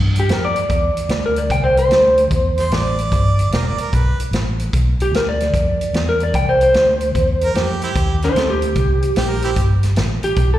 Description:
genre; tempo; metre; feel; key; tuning
electric blues shuffle; 149 BPM; 4/4; swing 65% on 8ths; unclear; A4 = 439 Hz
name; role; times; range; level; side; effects
vintage muted fingered electric bass; bass; 0.0-10.6 s; E1 to G2; -19 LUFS; equal; none
electric guitar through a small old amp; melody; 0.2-10.6 s; C4 to G5; -17 LUFS; equal; slapback echo
vintage drum kit; drums; 0.2-10.5 s; hi-hat, kick drum, snare drum; -21 LUFS; equal; none
clear harmonica; second line; 2.6-4.2, 7.4-9.6 s; C4 to D5; -24 LUFS; right 4 dB; slapback echo
room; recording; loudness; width
light reverb; live gig heard through the venue's PA, recital hall reverb; -14 LUFS; side -13 dB against mid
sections
0.0-10.6 A section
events
none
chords
0.0 G5; 1.5 C69; 3.1 G13; 6.3 Cadd9; 7.9 Cm7; 9.6 Gadd9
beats
0.29 0.70 1.10 | 1.50 1.91 2.31 2.71 | 3.12 3.52 3.92 4.33 | 4.73 5.13 5.53 5.93 | 6.34 6.74 7.14 7.54 | 7.95 8.35 8.75 9.15 | 9.56 9.96 10.36

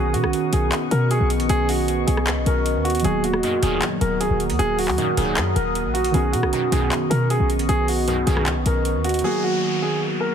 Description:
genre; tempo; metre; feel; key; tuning
hip hop, trap; 155 BPM; 4/4; half-time; Eb minor; A4 = 440 Hz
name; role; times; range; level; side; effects
dark grand piano; melody; 0.0-10.3 s; F#4 to Bb4; -24 LUFS; right 2 dB; low-pass filter, ping-pong delay
warbly lo-fi synth keys; accompaniment; 0.0-10.3 s; D#3 to F#4; -26 LUFS; right 1 dB; chorus, low-pass filter
deep dark ambient pad; sustained chords; 0.0-9.2 s; B3 to Eb6; -28 LUFS; equal; chorus, built-in reverb
short 808-style bass; bass; 0.0-9.2 s; Db1 to B2; -22 LUFS; left 1 dB; none
trap drum kit; drums; 0.1-9.2 s; handclaps, hi-hat, rim click; -28 LUFS; equal; none
resonant sweep polysynth; stabs; 3.4-8.4 s; Gb2 to Eb3; -28 LUFS; right 1 dB; chorus, phaser
downlifter; sound effects; 9.2-10.3 s; none; -28 LUFS; left 1 dB; none
room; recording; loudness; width
little or no reverb; heavily compressed radio sound; -18 LUFS; side -8 dB against mid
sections
0.0-9.2 A section; 9.2-10.3 B section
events
none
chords
0.0 Badd9; 3.0 Ebm; 6.1 Badd9; 9.2 Ebm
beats
0.33 0.72 1.11 | 1.50 1.88 2.27 2.66 | 3.04 3.43 3.82 4.21 | 4.59 4.98 5.37 5.75 | 6.14 6.53 6.92 7.30 | 7.69 8.08 8.46 8.85 | 9.24 9.62 10.01

